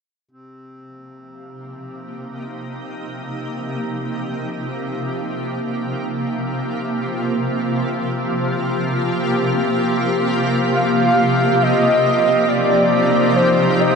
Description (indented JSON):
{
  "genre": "ambient",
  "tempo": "free time",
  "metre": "none",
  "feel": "none",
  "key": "C minor",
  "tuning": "A4 = 441 Hz",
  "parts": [
    { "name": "shimmering ambient pad", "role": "sustained chords", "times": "1.4-14.0 s", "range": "C3 to G4", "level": "-19 LUFS", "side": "equal", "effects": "chorus, built-in reverb" },
    { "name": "hand-pumped harmonium", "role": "drone", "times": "0.3-14.0 s", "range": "C3 to C4", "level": "-30 LUFS", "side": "equal", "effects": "none" },
    { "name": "breathy flute-like synth lead", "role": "melody", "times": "10.7-14.0 s", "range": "C5 to F5", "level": "-16 LUFS", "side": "equal", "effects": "analog chorus, cassette tape, tape echo" }
  ],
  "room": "wet huge ambient reverb, RT60 7.8 s",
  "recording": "none",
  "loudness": "-16 LUFS",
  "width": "side -5 dB against mid",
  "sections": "0.3-14.0 A section",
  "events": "fade-in on ambient pad 0.3-14.0; fade-in on harmonium 0.3-14.0",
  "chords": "0.3 Cm7",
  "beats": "free time"
}